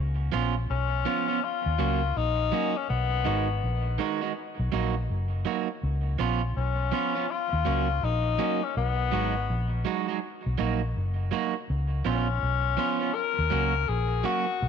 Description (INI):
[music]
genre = roots reggae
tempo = 82 BPM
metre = 4/4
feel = swing 62% on 16ths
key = unclear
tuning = A4 = 440 Hz
[part]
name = vintage muted fingered electric bass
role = bass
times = 0.0-14.7 s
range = F#1 to D#2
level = -27 LUFS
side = left 1 dB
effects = none
[part]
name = electric guitar at the edge of break-up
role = accompaniment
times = 0.3-14.5 s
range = D#3 to F#4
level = -30 LUFS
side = right 11 dB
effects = tape echo
[part]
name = breathy tenor saxophone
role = melody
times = 0.7-14.7 s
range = B3 to A#4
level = -29 LUFS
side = left 11 dB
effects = tape echo
[sound]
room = light reverb, small room reverb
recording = 1960s-style stereo with parts hard left and right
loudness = -25 LUFS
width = side -7 dB against mid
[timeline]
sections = 0.0-14.7 A section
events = none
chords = 0.0 C#7; 1.4 D#m7; 2.9 B6; 4.4 F#6; 5.8 C#7; 7.3 D#m7; 8.8 B6; 10.2 F#6; 11.7 C#7; 13.1 D#m7 (rootless)